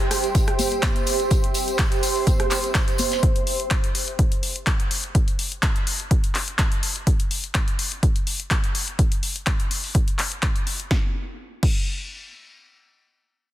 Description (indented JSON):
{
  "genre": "piano house",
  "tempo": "125 BPM",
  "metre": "4/4",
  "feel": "swing 53% on 16ths",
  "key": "unclear",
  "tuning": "A4 = 440 Hz",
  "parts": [
    { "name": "punchy analog drum machine", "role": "drums", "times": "0.0-11.8 s", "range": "crash cymbal, handclaps, hi-hat, rim click, snare drum", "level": "-26 LUFS", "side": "left 2 dB", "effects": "none" },
    { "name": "granular cloud pad", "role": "texture", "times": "0.0-3.2 s", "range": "G4 to E5", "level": "-25 LUFS", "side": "right 3 dB", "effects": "built-in reverb, sidechain pumping" },
    { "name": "modern studio drum kit", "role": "drums", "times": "0.1-3.2 s", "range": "hi-hat, snare drum", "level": "-35 LUFS", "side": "right 3 dB", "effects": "high-pass filter on hats, high-pass filter on snare, high-pass filter on room" },
    { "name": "tambourine and congas", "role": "percussion", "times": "0.1-3.2 s", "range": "none", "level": "-31 LUFS", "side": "left 4 dB", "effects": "none" },
    { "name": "electronic kick drum", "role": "drums", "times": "0.3-11.8 s", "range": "none", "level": "-22 LUFS", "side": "equal", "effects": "none" }
  ],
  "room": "light reverb, studio reverb",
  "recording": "dense, heavily limited modern master",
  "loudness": "-20 LUFS",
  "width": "side -14 dB against mid",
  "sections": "0.0-10.9 A section; 10.9-13.5 B section",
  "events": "none",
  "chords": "0.0 Am7 (rootless); 1.1 C; 3.2 N.C."
}